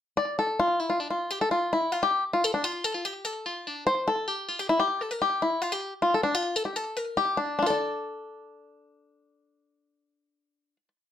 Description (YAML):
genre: rock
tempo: 291 BPM (eighths)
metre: 9/8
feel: straight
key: D minor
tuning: A4 = 440 Hz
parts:
  - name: bluegrass banjo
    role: solo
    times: 0.2-10.9 s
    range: D4 to D5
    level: -25 LUFS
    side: left 2 dB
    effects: slapback echo
room: moderate studio reverb, RT60 0.6 s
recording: none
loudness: -25 LUFS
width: side -10 dB against mid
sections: 0.2-7.6 A section; 7.6-11.1 final chord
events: none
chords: 0.2 Dm; 3.9 C (rootless); 5.7 Bb6/D; 7.6 D5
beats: | 0.17 0.38 0.58 0.79 0.99 1.20 1.41 1.61 1.82 | 2.02 2.23 2.43 2.64 2.85 3.05 3.26 3.46 3.67 | 3.87 4.08 4.28 4.49 4.70 4.90 5.11 5.31 5.52 | 5.72 5.93 6.14 6.34 6.55 6.76 6.96 7.17 7.38 | 7.58 7.79 8.00 8.20 8.41 8.62 8.82 9.03 9.23 | 9.44 9.65 9.86 10.06 10.27 10.47 10.68